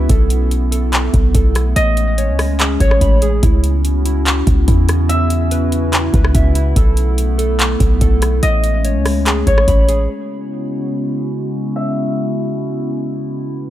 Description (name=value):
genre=hip hop, atmospheric cloud-rap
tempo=144 BPM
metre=4/4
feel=half-time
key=C# minor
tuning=A4 = 441 Hz
part: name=concert harp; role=melody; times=0.0-13.5 s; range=C#5 to E5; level=-22 LUFS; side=left 1 dB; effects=low-pass filter, tape echo
part: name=warbly tape-like pad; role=sustained chords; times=0.0-13.7 s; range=B2 to B4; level=-21 LUFS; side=left 1 dB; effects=chorus, built-in reverb, sidechain pumping, low-pass filter
part: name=warbly lo-fi synth keys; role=arpeggios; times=0.0-10.1 s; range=E4 to B5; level=-25 LUFS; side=right 4 dB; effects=chorus, low-pass filter, tape echo
part: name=warm 808-style bass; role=bass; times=0.0-10.1 s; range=A1 to E2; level=-15 LUFS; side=equal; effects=none
part: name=booming analog drum machine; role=drums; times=0.1-10.0 s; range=handclaps, hi-hat, kick drum, rim click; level=-15 LUFS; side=equal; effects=none
room=digital ambience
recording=none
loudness=-13 LUFS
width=side -13 dB against mid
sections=0.0-10.1 A section; 10.1-13.7 B section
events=filter sweep 10.1-13.7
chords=0.1 B7sus4; 1.8 Amaj9; 3.4 C#m7; 6.8 B7sus4; 8.4 Amaj9; 10.1 C#m7